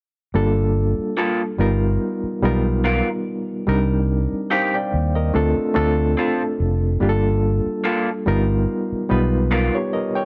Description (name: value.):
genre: soul.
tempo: 72 BPM.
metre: 4/4.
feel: swing 54% on 16ths.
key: G minor.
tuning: A4 = 441 Hz.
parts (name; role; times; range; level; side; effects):
bright reed electric piano; accompaniment; 0.3-10.2 s; G3 to G5; -23 LUFS; equal; overdrive, fast tremolo.
fingered electric bass; bass; 0.3-9.7 s; F1 to Eb2; -22 LUFS; equal; none.
electric guitar through a small old amp; riff; 1.2-9.8 s; Bb3 to A#4; -23 LUFS; equal; none.
room: little or no reverb.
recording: dry, close 1970s-style studio recording.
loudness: -20 LUFS.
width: mono.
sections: 0.3-10.2 A section.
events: none.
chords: 0.3 Gm9; 1.6 G7alt; 3.7 Cm7; 5.3 Dm7; 7.0 Gm9; 8.3 G7alt.